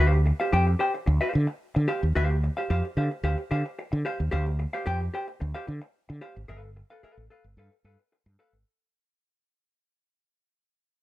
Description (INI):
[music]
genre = funk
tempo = 111 BPM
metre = 4/4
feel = straight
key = D dorian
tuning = A4 = 440 Hz
[part]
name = vintage hollow-body jazz guitar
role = accompaniment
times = 0.0-8.6 s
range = G4 to G5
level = -29 LUFS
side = left 1 dB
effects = none
[part]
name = mellow fretless electric bass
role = bass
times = 0.0-8.6 s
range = G1 to D3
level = -24 LUFS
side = equal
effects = none
[sound]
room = little or no reverb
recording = dark, warm production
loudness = -24 LUFS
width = side -16 dB against mid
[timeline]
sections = 0.0-8.7 A section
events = fade-out 0.0-8.7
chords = 0.0 Dm7; 6.5 G9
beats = 0.52 1.07 1.61 | 2.15 2.69 3.24 3.78 | 4.32 4.86 5.40 5.95 | 6.49 7.03 7.57 8.11